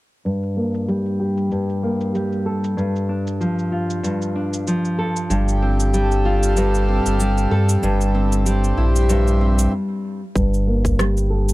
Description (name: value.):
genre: folktronica.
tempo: 95 BPM.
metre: 4/4.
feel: swing 56% on 16ths.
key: G dorian.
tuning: A4 = 440 Hz.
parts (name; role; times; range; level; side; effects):
nylon-string guitar; arpeggios; 0.3-11.5 s; G2 to A4; -20 LUFS; equal; low-pass filter, tape echo.
electronic shaker and rim click; drums; 0.3-11.5 s; none; -29 LUFS; right 1 dB; overdrive, low-pass filter on perc, low-pass filter on snare, low-pass filter on room.
hand-pumped harmonium; sustained chords; 5.3-9.7 s; G3 to F5; -24 LUFS; equal; none.
warm sub bass; bass; 5.3-11.5 s; G1 to G2; -18 LUFS; equal; none.
electronic kick drum; drums; 10.4-11.0 s; none; -21 LUFS; equal; overdrive.
room: light reverb.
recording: dry, close 1970s-style studio recording.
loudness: -17 LUFS.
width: side -19 dB against mid.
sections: 0.2-10.4 A section; 10.4-11.5 B section.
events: filter sweep on nylon-string guitar 0.2-10.4; stop 9.7-10.4.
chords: 0.2 Gmadd9; 2.8 Dm/G; 5.3 F/G; 7.8 C/G; 10.4 Gmadd9.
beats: | 0.25 0.88 1.51 2.15 | 2.78 3.41 4.04 4.67 | 5.30 5.93 6.57 7.20 | 7.83 8.46 9.09 9.72 | 10.36 10.99.